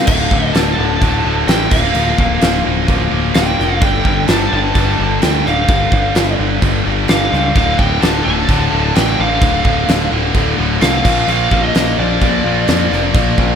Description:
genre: hard rock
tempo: 129 BPM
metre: 4/4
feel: straight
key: D minor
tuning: A4 = 441 Hz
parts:
  - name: lead guitar through a small cranked amp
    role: melody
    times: 0.0-13.6 s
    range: D5 to A5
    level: -19 LUFS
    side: left 1 dB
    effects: overdrive, analog delay
  - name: cranked stack guitar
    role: riff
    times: 0.0-13.6 s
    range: D2 to Bb3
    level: -20 LUFS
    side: left 13 dB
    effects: overdrive
  - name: scooped high-gain guitar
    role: riff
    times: 0.0-13.6 s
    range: D2 to Bb3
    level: -21 LUFS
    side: right 14 dB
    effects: distortion
  - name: growling picked electric bass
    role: bass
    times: 0.1-13.6 s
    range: D1 to F2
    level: -19 LUFS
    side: equal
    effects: overdrive
  - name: huge arena drum kit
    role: drums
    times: 0.1-13.5 s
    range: crash cymbal, kick drum, snare drum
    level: -16 LUFS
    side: right 1 dB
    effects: none
  - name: heavy high-gain guitar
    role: riff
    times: 7.6-13.6 s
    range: D2 to Bb3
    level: -24 LUFS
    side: equal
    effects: distortion
room: small room ambience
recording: none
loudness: -12 LUFS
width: side -7 dB against mid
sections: 0.1-13.6 A section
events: none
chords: 0.1 Dm; 1.7 Bb/D; 3.8 G5; 7.6 Dm; 11.1 Bb

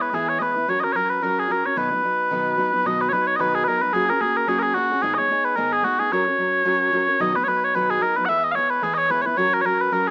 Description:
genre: celtic folk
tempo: 221 BPM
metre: 4/4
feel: swing 55% on 8ths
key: B major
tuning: A4 = 440 Hz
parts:
  - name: mellow small bagpipes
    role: melody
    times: 0.0-10.1 s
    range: F#4 to F#5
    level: -19 LUFS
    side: equal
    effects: slapback echo
  - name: fingerpicked steel-string acoustic guitar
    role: accompaniment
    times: 0.0-10.1 s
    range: G#2 to B4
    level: -26 LUFS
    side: equal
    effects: none
room: moderate small room reverb, RT60 0.6 s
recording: rough home demo mix, small speaker sound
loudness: -18 LUFS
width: side -36 dB against mid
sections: 0.0-2.9 A section; 2.9-10.1 A section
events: none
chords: 0.0 E; 0.7 F#; 1.8 B; 3.9 F#add9; 5.0 G#m; 6.1 F#; 7.2 B; 8.3 E; 9.4 F#

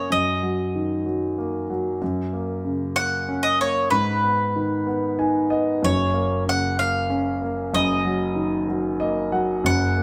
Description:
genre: pop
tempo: 63 BPM (dotted quarters)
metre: 6/8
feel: straight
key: F# major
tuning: A4 = 440 Hz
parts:
  - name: bowl-back mandolin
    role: melody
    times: 0.0-10.0 s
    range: B4 to F#5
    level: -26 LUFS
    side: equal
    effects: none
  - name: warm concert grand piano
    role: accompaniment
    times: 0.0-10.0 s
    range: F#1 to G#5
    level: -25 LUFS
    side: equal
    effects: none
room: moderate large studio reverb, RT60 1.2 s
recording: band playing live in one room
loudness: -23 LUFS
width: mono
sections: 0.0-5.8 A section; 5.8-10.0 B section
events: grand piano fill 4.9-5.8, 8.7-9.6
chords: 0.1 D#m/F#; 2.0 F#; 3.9 G#m; 5.8 F#; 7.7 D#m/F#

